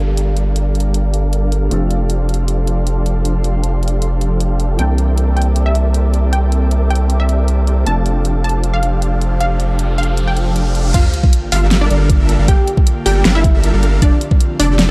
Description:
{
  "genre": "future bass",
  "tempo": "156 BPM",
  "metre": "4/4",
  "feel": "half-time",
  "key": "F major",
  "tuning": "A4 = 440 Hz",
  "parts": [
    { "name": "felt-muted upright piano", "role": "accompaniment", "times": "0.0-11.0 s", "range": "E3 to A5", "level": "-31 LUFS", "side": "equal", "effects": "none" },
    { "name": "airy breathy pad", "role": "sustained chords", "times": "0.0-14.9 s", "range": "D3 to D6", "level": "-31 LUFS", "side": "equal", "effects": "chorus, sidechain pumping" },
    { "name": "supersaw chords", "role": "riff", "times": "0.0-14.9 s", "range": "F3 to G5", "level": "-25 LUFS", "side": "equal", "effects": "subtle chorus, sidechain pumping, low-pass filter" },
    { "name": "saturated sub bass", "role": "bass", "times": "0.0-14.9 s", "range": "F1 to C2", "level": "-17 LUFS", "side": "equal", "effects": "sidechain pumping" },
    { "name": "downlifter, riser and sub drop", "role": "sound effects", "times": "0.0-1.7, 9.8-12.5 s", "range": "none", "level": "-30 LUFS", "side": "equal", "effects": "none" },
    { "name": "dubstep drum kit", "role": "drums", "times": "0.2-14.9 s", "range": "crash cymbal, hi-hat, snare drum", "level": "-23 LUFS", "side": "equal", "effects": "overdrive" },
    { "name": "unison pluck", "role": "melody", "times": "4.8-14.8 s", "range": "D4 to A5", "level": "-24 LUFS", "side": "equal", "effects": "sidechain pumping, tape echo" },
    { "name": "electronic kick drum", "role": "drums", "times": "10.9-14.4 s", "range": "none", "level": "-14 LUFS", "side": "equal", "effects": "overdrive" }
  ],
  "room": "little or no reverb",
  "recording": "dark, warm production",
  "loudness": "-15 LUFS",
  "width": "mono",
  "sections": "0.0-10.9 A section; 10.9-14.9 B section",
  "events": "filter sweep on analog synth pad 0.0-10.9; riser 9.8-10.9; drop 10.9-14.9; impact 10.9-12.5",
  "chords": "0.0 Gm7; 1.7 F6; 4.8 C13; 7.9 F6; 10.9 Gm7; 14.0 F6"
}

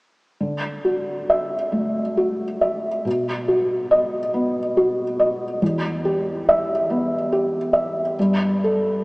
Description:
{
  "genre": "neoclassical minimalist piano",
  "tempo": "46 BPM (dotted quarters)",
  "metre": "6/8",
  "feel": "rubato",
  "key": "D major",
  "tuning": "A4 = 439 Hz",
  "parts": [
    { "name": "felt-muted upright piano", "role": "solo", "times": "0.4-9.0 s", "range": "E2 to E5", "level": "-19 LUFS", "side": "equal", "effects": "none" }
  ],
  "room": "wet cathedral reverb, RT60 5.7 s",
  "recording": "recorded in a church or concert hall, small speaker sound",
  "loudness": "-19 LUFS",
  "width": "side -28 dB against mid",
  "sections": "0.4-9.0 A section",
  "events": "none",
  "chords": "0.4 Dadd9; 3.1 B; 5.6 Em; 8.2 Gsus2"
}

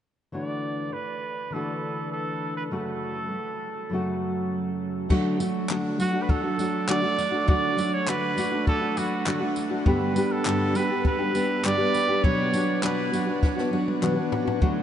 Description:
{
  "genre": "acoustic pop",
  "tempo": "101 BPM",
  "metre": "4/4",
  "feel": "straight",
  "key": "D major",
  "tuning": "A4 = 439 Hz",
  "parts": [
    { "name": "clear trumpet", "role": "melody", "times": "0.3-13.4 s", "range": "F#4 to D5", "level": "-28 LUFS", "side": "right 3 dB", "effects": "none" },
    { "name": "nylon-string guitar", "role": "accompaniment", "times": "0.3-14.8 s", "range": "F#2 to G4", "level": "-26 LUFS", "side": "left 1 dB", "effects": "none" },
    { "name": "picked steel-string acoustic guitar", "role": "arpeggios", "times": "5.1-14.8 s", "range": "F#3 to G4", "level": "-32 LUFS", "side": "right 4 dB", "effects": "none" },
    { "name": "compact cocktail drum kit", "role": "drums", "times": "5.1-14.8 s", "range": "crash cymbal, handclaps, kick drum, snare drum, tambourine, toms", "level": "-26 LUFS", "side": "equal", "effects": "none" },
    { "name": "group handclap", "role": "percussion", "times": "5.7-14.2 s", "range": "none", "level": "-42 LUFS", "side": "left 4 dB", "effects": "none" }
  ],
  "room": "wet huge ambient reverb, RT60 7.4 s",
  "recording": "in a vast, echoing space, nothing above 10.8 kHz",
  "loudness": "-23 LUFS",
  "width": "side -10 dB against mid",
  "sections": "0.3-5.1 A section; 5.1-14.8 B section",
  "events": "drum fill 13.4-14.6",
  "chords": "0.3 Dadd9; 2.7 F#m; 5.1 D; 9.9 G; 12.2 Bm"
}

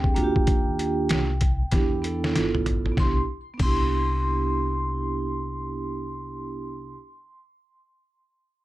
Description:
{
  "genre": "hip hop, jazz-hop",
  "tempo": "96 BPM",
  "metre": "4/4",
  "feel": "swing 63% on 16ths",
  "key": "C major",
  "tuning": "A4 = 440 Hz",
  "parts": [
    { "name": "vibraphone with hard mallets", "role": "melody", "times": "0.0-6.9 s", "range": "G5 to C6", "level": "-32 LUFS", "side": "left 1 dB", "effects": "tape echo" },
    { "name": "vibraphone with soft mallets", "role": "accompaniment", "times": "0.0-7.0 s", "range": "Bb3 to A4", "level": "-28 LUFS", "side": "right 3 dB", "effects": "none" },
    { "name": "upright bass", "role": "bass", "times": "0.0-6.9 s", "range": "G1 to E2", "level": "-29 LUFS", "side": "equal", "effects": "none" },
    { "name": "trip hop sampler-style drum kit", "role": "drums", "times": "0.0-3.8 s", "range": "crash cymbal, hi-hat, kick drum, snare drum, toms", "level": "-24 LUFS", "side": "equal", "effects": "overdrive" }
  ],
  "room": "light reverb",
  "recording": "dark, warm production",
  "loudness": "-22 LUFS",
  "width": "side -16 dB against mid",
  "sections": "0.0-3.0 A section; 3.0-5.5 B section",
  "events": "drum fill 1.7-3.0",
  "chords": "0.2 Ebmaj9; 1.7 Em7; 2.3 G13; 3.0 Cmaj9"
}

